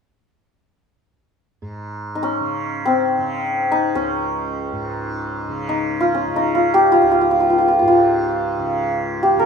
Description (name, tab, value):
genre	indian classical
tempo	free time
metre	none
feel	none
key	Db raga yaman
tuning	A4 = 440 Hz
part	tanpura	drone	1.6-9.5 s	Db2 to Db3	-27 LUFS	right 2 dB	none
part	santur	melody	2.2-9.5 s	C4 to Bb4	-16 LUFS	equal	none
room	moderate small room reverb, RT60 0.6 s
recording	minimal, uncompressed stereo recording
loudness	-16 LUFS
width	side -6 dB against mid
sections	1.6-9.5 A section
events	none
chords	none